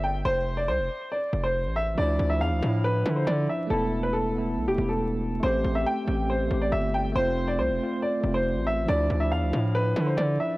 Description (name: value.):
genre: hip hop, drill.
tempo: 139 BPM.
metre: 4/4.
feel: half-time.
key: unclear.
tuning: A4 = 437 Hz.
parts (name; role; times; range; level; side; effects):
clear upright piano; melody; 0.0-10.6 s; G4 to G5; -27 LUFS; equal; none.
distorted 808-style bass; bass; 0.0-10.4 s; E1 to D3; -27 LUFS; equal; distortion.
tine electric piano; accompaniment; 1.9-10.6 s; F3 to G4; -29 LUFS; equal; fast stereo tremolo.
room: small room ambience.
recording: worn, warbling old tape, cassette tape, vinyl crackle, warbly pitch drift.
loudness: -23 LUFS.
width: side -20 dB against mid.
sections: 0.0-10.6 A section.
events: break 0.0-2.0.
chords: 0.2 F; 2.0 Dmadd9; 3.7 Esus4; 5.4 Am7; 7.2 F; 8.9 Dmadd9.